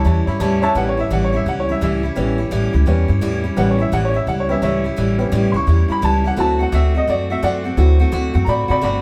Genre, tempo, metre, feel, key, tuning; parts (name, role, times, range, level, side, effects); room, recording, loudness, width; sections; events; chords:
rock; 171 BPM; 4/4; swing 64% on 8ths; A mixolydian; A4 = 439 Hz
clear upright piano; accompaniment; 0.0-9.0 s; F#3 to C#6; -23 LUFS; equal
picked steel-string acoustic guitar; accompaniment; 0.0-9.0 s; A2 to F#4; -23 LUFS; equal
upright bass; bass; 0.1-9.0 s; G1 to C3; -21 LUFS; equal
light reverb; band playing live in one room; -17 LUFS; mono
0.8-9.0 A section
upright piano solo 0.8-9.0
0.0 A7; 6.4 D7